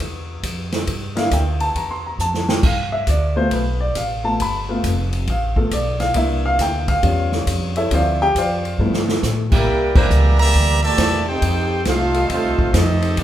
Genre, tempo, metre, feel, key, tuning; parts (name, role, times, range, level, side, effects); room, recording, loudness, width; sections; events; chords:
jazz, big band swing; 136 BPM; 4/4; swing 66% on 8ths; C major; A4 = 443 Hz
warm baby grand piano; accompaniment; 0.0-9.6 s; F3 to C6; -20 LUFS; left 1 dB
upright bass; bass; 0.0-13.2 s; F1 to C3; -20 LUFS; equal
swinging big-band drum kit; drums; 0.0-13.2 s; crash cymbal, hi-hat, kick drum, ride cymbal, snare drum; -22 LUFS; equal
brilliant trumpet section; melody; 9.5-13.2 s; Bb3 to Bb5; -21 LUFS; right 2 dB
bright trombone section; second line; 9.5-13.2 s; Bb2 to G4; -22 LUFS; equal
warm saxophone section; sustained chords; 10.0-12.7 s; G3 to C5; -27 LUFS; equal
moderate large studio reverb, RT60 1.1 s; band playing live in one room; -16 LUFS; side -12 dB against mid
0.0-9.7 A section; 9.7-13.2 B section
grand piano solo 0.0-9.7; drum fill 2.2-2.6, 8.8-9.2; band accent 9.9
0.0 C9 (rootless); 2.6 G9; 6.2 C9; 7.0 A7b13; 7.9 Dm7; 8.8 G13; 9.7 C9; 11.4 F9